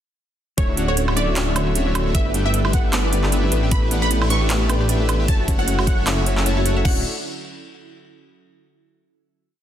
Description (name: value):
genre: future bass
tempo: 153 BPM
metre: 4/4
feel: swing 56% on 16ths, half-time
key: D major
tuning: A4 = 439 Hz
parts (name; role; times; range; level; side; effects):
- wide unison pluck; melody; 0.6-7.0 s; C#5 to C#6; -28 LUFS; right 2 dB; phaser, sidechain pumping, ping-pong delay
- warm concert grand piano; accompaniment; 0.6-7.0 s; A3 to C#5; -29 LUFS; left 4 dB; sidechain pumping, ping-pong delay
- airy breathy pad; sustained chords; 0.6-7.0 s; D3 to B4; -35 LUFS; right 2 dB; none
- wide unison pluck; arpeggios; 0.6-7.0 s; B3 to E5; -30 LUFS; left 1 dB; sidechain pumping, ping-pong delay
- soft supersaw; riff; 0.6-7.0 s; A3 to A5; -26 LUFS; equal; sidechain pumping
- wide detuned saw bass; bass; 0.6-7.0 s; D1 to A1; -21 LUFS; equal; chorus, sidechain pumping
- big-room dance drum kit; drums; 0.6-6.9 s; crash cymbal, handclaps, hi-hat, woodblock; -25 LUFS; right 2 dB; overdrive
- electronic kick drum; drums; 0.6-6.9 s; none; -19 LUFS; equal; none
room: digital ambience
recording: dense, heavily limited modern master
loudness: -17 LUFS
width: side -10 dB against mid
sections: 0.6-6.9 drop; 6.9-8.4 final chord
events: drop 0.6-6.9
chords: 0.6 Dmaj9; 2.1 G69; 3.5 A9sus4; 5.3 F#m7; 6.9 Dmaj9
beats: | 0.58 0.97 1.36 1.75 | 2.15 2.54 2.93 3.32 | 3.72 4.11 4.50 4.89 | 5.28 5.68 6.07 6.46 | 6.85